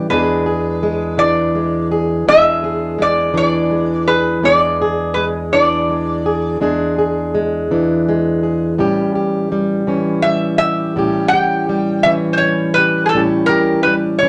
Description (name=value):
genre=acoustic country blues, solo or duo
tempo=55 BPM (dotted quarters)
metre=12/8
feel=straight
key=E mixolydian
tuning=A4 = 442 Hz
part: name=fingerpicked plugged-in old ladder-braced acoustic guitar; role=accompaniment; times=0.0-14.3 s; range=E2 to G#4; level=-18 LUFS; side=equal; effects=none
part: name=lap resonator guitar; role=melody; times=0.1-14.3 s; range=G#4 to G5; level=-17 LUFS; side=equal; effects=none
room=wet club reverb, RT60 0.6 s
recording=none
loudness=-16 LUFS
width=mono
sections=0.0-14.3 A section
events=none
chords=0.1 E7; 8.8 A7